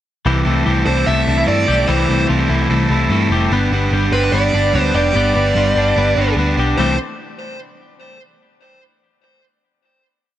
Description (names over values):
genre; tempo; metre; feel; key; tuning
indie pop; 147 BPM; 4/4; straight; C major; A4 = 440 Hz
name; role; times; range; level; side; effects
crunchy overdriven guitar; accompaniment; 0.3-7.0 s; C3 to B4; -20 LUFS; right 5 dB; none
twelve-string electric guitar; arpeggios; 0.3-7.0 s; E3 to G4; -20 LUFS; left 5 dB; spring reverb
vintage muted picked electric bass; bass; 0.3-7.0 s; F1 to G2; -18 LUFS; equal; none
smooth overdriven lead guitar; melody; 0.9-7.0 s; B4 to E5; -19 LUFS; right 2 dB; tube saturation, digital delay
room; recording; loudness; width
light reverb; none; -13 LUFS; side -12 dB against mid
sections
0.3-6.8 verse; 6.8-8.4 final chord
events
none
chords
0.3 C6; 3.5 G; 6.8 C6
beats
| 0.25 0.66 1.07 1.47 | 1.88 2.29 2.70 3.10 | 3.51 3.92 4.33 4.74 | 5.15 5.55 5.96 6.37 | 6.78